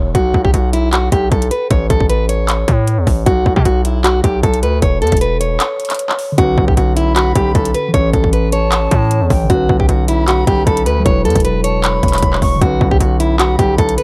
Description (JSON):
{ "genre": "hip hop, trap", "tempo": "154 BPM", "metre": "4/4", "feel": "half-time", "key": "B minor", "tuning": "A4 = 439 Hz", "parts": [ { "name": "fingerpicked plugged-in steel-string acoustic guitar", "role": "melody", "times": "0.0-14.0 s", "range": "E4 to C#5", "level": "-19 LUFS", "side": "equal", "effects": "low-pass filter" }, { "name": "distorted 808-style bass", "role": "bass", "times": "0.0-14.0 s", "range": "E1 to B2", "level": "-18 LUFS", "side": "equal", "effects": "distortion" }, { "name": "trap drum kit", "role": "drums", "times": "0.1-14.0 s", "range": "handclaps, hi-hat, kick drum", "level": "-19 LUFS", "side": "equal", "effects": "none" }, { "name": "mellow tine electric piano", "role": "accompaniment", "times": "6.3-14.0 s", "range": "D3 to B4", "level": "-24 LUFS", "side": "equal", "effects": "low-pass filter" }, { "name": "silver concert flute", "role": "second line", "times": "7.0-14.0 s", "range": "G5 to C#6", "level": "-27 LUFS", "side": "equal", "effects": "analog delay" } ], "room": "little or no reverb", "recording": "dry, gritty hardware recording", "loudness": "-14 LUFS", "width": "mono", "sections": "0.0-14.0 A section", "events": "break 5.6-6.4", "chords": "0.1 B5; 1.7 A; 3.3 B5; 4.8 A/E (rootless); 6.4 Bmadd9; 7.9 A; 9.5 Bmadd9; 11.1 Esus2; 12.6 Bmadd9" }